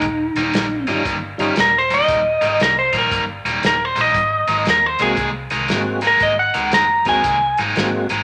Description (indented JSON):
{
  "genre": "electric blues shuffle",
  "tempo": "116 BPM",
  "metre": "4/4",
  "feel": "swing 64% on 8ths",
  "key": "Eb major",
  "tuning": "A4 = 440 Hz",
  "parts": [
    { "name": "lightly driven lead guitar", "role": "melody", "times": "0.0-7.6 s", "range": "Eb4 to Bb5", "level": "-18 LUFS", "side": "equal", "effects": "none" },
    { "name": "cranked stack guitar", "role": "riff", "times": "0.0-8.2 s", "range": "Eb3 to Eb4", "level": "-24 LUFS", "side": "equal", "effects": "overdrive, spring reverb" },
    { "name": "vintage muted fingered electric bass", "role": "bass", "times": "0.0-8.2 s", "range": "Eb1 to F2", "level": "-33 LUFS", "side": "equal", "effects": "none" },
    { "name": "warm soul drum kit", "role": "drums", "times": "0.0-8.2 s", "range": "hi-hat, kick drum, snare drum", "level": "-28 LUFS", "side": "equal", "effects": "none" },
    { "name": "tonewheel organ", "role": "accompaniment", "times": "0.9-1.6, 5.0-8.1 s", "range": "G3 to Gb4", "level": "-26 LUFS", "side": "equal", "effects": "overdrive, chorus vibrato, slow rotary speaker" }
  ],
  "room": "moderate large studio reverb, RT60 1.1 s",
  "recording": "none",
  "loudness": "-17 LUFS",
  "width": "mono",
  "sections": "0.0-8.2 A section",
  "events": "none",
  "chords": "0.0 Eb9; 4.2 Ab9"
}